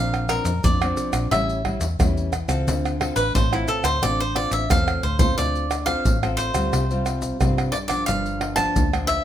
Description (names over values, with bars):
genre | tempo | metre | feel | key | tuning
samba and choro | 89 BPM | 4/4 | straight | D minor | A4 = 439 Hz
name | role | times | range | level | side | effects
cavaquinho | melody | 0.0-9.2 s | E4 to A5 | -24 LUFS | equal | none
nylon-string guitar | accompaniment | 0.0-9.2 s | G2 to A4 | -27 LUFS | left 2 dB | none
vintage muted fingered electric bass | bass | 0.0-9.2 s | G1 to C3 | -25 LUFS | equal | none
maracas, pandeiro, tamborim and surdo | percussion | 0.1-9.2 s | none | -24 LUFS | right 1 dB | none
room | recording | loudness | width
light reverb | minimal, uncompressed stereo recording | -19 LUFS | side -11 dB against mid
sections
0.0-5.4 A section; 5.4-9.2 B section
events
cavaquinho solo 0.0-5.4; drum fill 4.9-5.4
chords
0.0 Bbadd9; 1.3 A7; 2.7 Dm7; 6.7 Csus4; 8.1 Gm7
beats
0.64 1.32 1.99 | 2.67 3.35 4.03 4.70 | 5.38 6.05 6.73 7.41 | 8.08 8.76